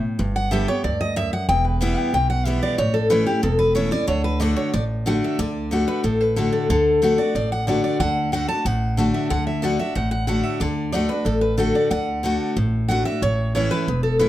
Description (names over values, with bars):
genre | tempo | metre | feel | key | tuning
bluegrass | 184 BPM | 4/4 | straight | D major | A4 = 444 Hz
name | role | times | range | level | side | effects
picked steel-string acoustic guitar | melody | 0.0-14.3 s | G4 to A5 | -22 LUFS | equal | none
picked steel-string acoustic guitar | accompaniment | 0.0-14.3 s | E2 to G4 | -23 LUFS | left 1 dB | none
upright bass | bass | 0.2-14.3 s | E1 to D2 | -24 LUFS | right 1 dB | none
room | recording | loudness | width
little or no reverb | close, detailed microphones | -19 LUFS | side -13 dB against mid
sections
0.0-5.4 A section; 5.4-14.3 B section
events
steel-string acoustic guitar solo 0.0-5.4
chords
0.2 G; 1.5 Em; 2.8 A; 4.1 D; 13.2 A